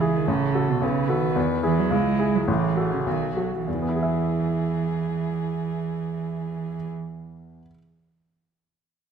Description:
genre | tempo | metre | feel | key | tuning
quick classical-period movement for piano trio | 97-110 BPM | 2/4 | straight | E major | A4 = 440 Hz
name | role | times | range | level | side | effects
dark violin | melody | 0.0-6.9 s | E4 to B4 | -34 LUFS | left 7 dB | none
dark cello | second line | 0.0-6.9 s | B2 to G#3 | -25 LUFS | right 8 dB | none
clear baby grand piano | accompaniment | 0.0-7.8 s | A1 to E5 | -26 LUFS | left 2 dB | none
room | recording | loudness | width
moderate recital hall reverb, RT60 1.4 s | close, detailed microphones | -22 LUFS | side -7 dB against mid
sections
0.0-3.7 A section; 3.7-6.1 B section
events
slowing down 0.8-3.7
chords
0.3 F#m/A; 0.8 B7; 1.4 E; 1.9 C#m; 2.5 F#m7/A; 3.1 B7; 3.7 E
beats
| 0.27 0.82 | 1.36 1.92 | 2.48 3.06 | 3.67 4.28 | 4.90 5.51

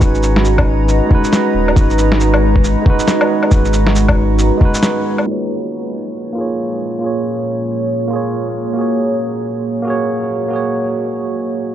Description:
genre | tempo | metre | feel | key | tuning
future garage | 137 BPM | 4/4 | swing 62% on 16ths | unclear | A4 = 440 Hz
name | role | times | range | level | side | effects
bright tine electric piano | accompaniment | 0.0-11.7 s | G#3 to C#5 | -18 LUFS | right 2 dB | medium stereo tremolo, sidechain pumping, tape echo
deep dark ambient pad | sustained chords | 0.0-11.4 s | A#2 to A#5 | -20 LUFS | equal | chorus, built-in reverb, sidechain pumping
warm sub bass | bass | 0.0-4.5 s | D#1 to G#1 | -14 LUFS | equal | sidechain pumping
electronic kick drum | drums | 0.0-4.7 s | none | -13 LUFS | equal | overdrive
electronic shaker, snare drum and woodblock | drums | 0.0-5.3 s | none | -18 LUFS | left 1 dB | overdrive
drifting glass-harmonics texture | texture | 0.0-5.3 s | C#4 to C#5 | -30 LUFS | right 2 dB | chorus, built-in reverb
room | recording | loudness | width
light reverb, digital ambience | cassette tape, low-pass filter | -13 LUFS | side -11 dB against mid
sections
0.0-5.3 A section; 5.3-11.7 B section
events
break 4.8-5.3; band accent 4.8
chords
0.0 G#m7; 5.3 A#m7; 8.8 F#add9/A#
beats
| 0.01 0.45 0.89 1.33 | 1.76 2.20 2.64 3.08 | 3.52 3.95 4.39 4.83 | 5.27 5.71 6.14 6.58 | 7.02 7.46 7.89 8.33 | 8.77 9.21 9.65 10.09 | 10.52 10.96 11.40

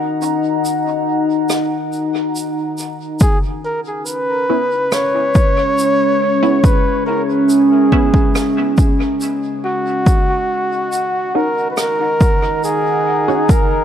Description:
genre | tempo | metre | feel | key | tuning
ambient dub | 70 BPM | 4/4 | straight | C# dorian | A4 = 440 Hz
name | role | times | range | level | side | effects
deep dark ambient pad | sustained chords | 0.0-13.8 s | C#4 to A#5 | -18 LUFS | equal | chorus, built-in reverb
shaker and rim click | drums | 0.2-13.7 s | none | -26 LUFS | right 2 dB | dub echo
trumpet with bucket mute | melody | 3.2-13.8 s | F#4 to C#5 | -17 LUFS | equal | dub echo
electronic kick drum | drums | 3.2-13.7 s | none | -13 LUFS | equal | overdrive
filtered dub chord stab | stabs | 4.5-13.5 s | B3 to F#4 | -24 LUFS | right 1 dB | phaser, wide subtle chorus, dub echo
room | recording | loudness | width
light reverb, small room ambience | echo-heavy mix | -13 LUFS | side -9 dB against mid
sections
0.0-13.8 A section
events
break 0.0-3.2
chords
0.0 D#m; 3.2 C#m; 10.1 D#m7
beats
0.64 1.50 2.35 | 3.21 4.07 4.92 5.78 | 6.64 7.50 8.35 9.21 | 10.07 10.93 11.78 12.64 | 13.50

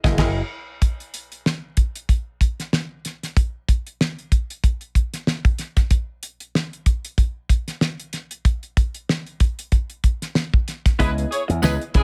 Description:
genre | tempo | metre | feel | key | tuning
funk | 94 BPM | 4/4 | swing 56% on 16ths | C# dorian | A4 = 443 Hz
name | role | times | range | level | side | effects
vintage hollow-body jazz guitar | accompaniment | 0.0-0.4, 11.0-12.0 s | B3 to D#5 | -29 LUFS | equal | plate reverb
slap bass with an envelope filter | bass | 0.0-0.4, 11.0-12.0 s | F#1 to C#3 | -24 LUFS | equal | none
damped 70s drum kit | drums | 0.0-12.0 s | crash cymbal, hi-hat, kick drum, snare drum | -22 LUFS | equal | none
mellow horn section | second line | 11.0-12.0 s | G#3 to C#5 | -28 LUFS | equal | plate reverb
tambourine | percussion | 11.6-11.8 s | none | -36 LUFS | equal | none
room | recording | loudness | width
little or no reverb | faint mains hum | -22 LUFS | mono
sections
0.8-11.0 A section; 11.0-12.0 B section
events
break 0.0-0.8; band accent 0.0-0.8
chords
0.0 F#13; 0.8 N.C.; 11.0 C#m9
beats
0.18 | 0.82 1.45 2.09 2.72 | 3.36 4.00 4.63 5.27 | 5.90 6.54 7.18 7.81 | 8.45 9.09 9.72 10.36 | 10.99 11.62

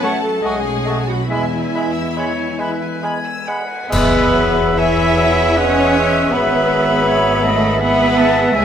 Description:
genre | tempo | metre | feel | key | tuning
classical, slow romantic movement for symphony orchestra | 66-83 BPM | 3/4 | rubato | E major | A4 = 440 Hz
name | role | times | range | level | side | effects
rich chamber violin section | melody | 0.0-8.6 s | G#4 to A5 | -27 LUFS | left 2 dB | none
bright clarinet | second line | 0.0-8.6 s | B4 to G#5 | -24 LUFS | left 2 dB | none
clear symphonic violin section | second line | 0.0-8.6 s | G#4 to E6 | -27 LUFS | left 4 dB | none
dark cor anglais | second line | 0.0-8.6 s | E5 to G#5 | -24 LUFS | right 2 dB | none
silver concert flute | second line | 0.0-8.6 s | G#5 to C#6 | -24 LUFS | left 2 dB | none
rich studio viola section | accompaniment | 0.0-8.6 s | E4 to E5 | -23 LUFS | right 1 dB | none
dark French horn section | sustained chords | 0.0-8.6 s | F#3 to E5 | -22 LUFS | left 3 dB | none
rich symphonic cello section | bass | 0.0-8.6 s | E3 to E4 | -20 LUFS | right 1 dB | none
clear bassoon | accompaniment | 0.1-8.6 s | E3 to A3 | -24 LUFS | right 2 dB | none
clear symphonic double bass section | bass | 0.4-8.6 s | G#1 to E2 | -23 LUFS | right 2 dB | none
cymbal swell, clash cymbals and concert bass drum | percussion | 1.3-5.5 s | none | -24 LUFS | equal | none
room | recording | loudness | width
moderate scoring stage reverb, RT60 1.6 s | none | -14 LUFS | side -9 dB against mid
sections
0.0-3.9 A section; 3.9-8.6 B section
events
band accent 3.9-4.8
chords
0.4 B9; 1.3 E; 6.3 E/G#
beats
0.44 | 1.30 2.17 3.04 | 3.91 4.79 5.57 | 6.32 7.07 7.80 | 8.54

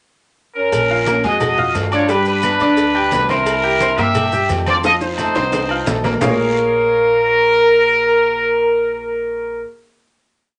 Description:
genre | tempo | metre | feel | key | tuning
latin, salsa | 175 BPM | 4/4 | straight | Bb minor | A4 = 440 Hz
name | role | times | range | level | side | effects
bright horn section | melody | 0.6-9.6 s | Db4 to E5 | -17 LUFS | equal | none
upright bass | bass | 0.7-9.6 s | Bb1 to G2 | -29 LUFS | equal | none
agogo bells and timbales | percussion | 0.7-6.3 s | none | -28 LUFS | equal | none
congas | percussion | 0.7-6.3 s | none | -30 LUFS | equal | none
cowbell and bongos | percussion | 0.7-6.3 s | none | -28 LUFS | equal | none
guiro | percussion | 0.7-6.3 s | none | -36 LUFS | equal | none
maracas | percussion | 0.7-6.3 s | none | -40 LUFS | equal | none
bright grand piano | accompaniment | 0.9-9.6 s | F3 to G6 | -23 LUFS | equal | none
room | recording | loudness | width
wet studio reverb, RT60 0.5 s | nothing above 10.3 kHz | -16 LUFS | mono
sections
0.0-0.7 pickup bar; 0.7-6.2 mambo (horn riffs); 6.2-9.0 final chord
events
drum fill 4.8-6.2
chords
0.0 N.C.; 0.7 Bbm7; 2.1 G; 3.5 C7; 4.8 F7; 6.2 Bbm7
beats
0.04 0.38 | 0.72 1.06 1.41 1.75 | 2.09 2.44 2.78 3.12 | 3.46 3.81 4.15 4.50 | 4.84 5.18 5.53 5.87 | 6.21 6.56 6.90 7.24 | 7.58 7.93 8.27 8.61

